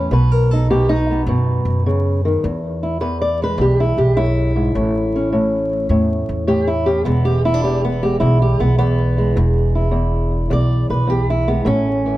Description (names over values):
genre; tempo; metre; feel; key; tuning
acoustic country blues, solo or duo; 104 BPM; 4/4; swing 67% on 8ths; E major; A4 = 440 Hz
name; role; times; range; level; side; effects
fingerpicked old ladder-braced acoustic guitar; melody; 0.0-12.2 s; E2 to D5; -17 LUFS; equal; tape echo
upright bass; bass; 0.0-12.2 s; E1 to F#2; -18 LUFS; equal; none
room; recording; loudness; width
light reverb; vinyl crackle; -15 LUFS; side -16 dB against mid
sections
0.0-2.4 A section; 2.4-12.2 A section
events
steel-string acoustic guitar solo 0.0-2.4, 2.4-12.2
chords
0.1 B; 2.4 E; 4.7 A; 7.1 E; 11.7 A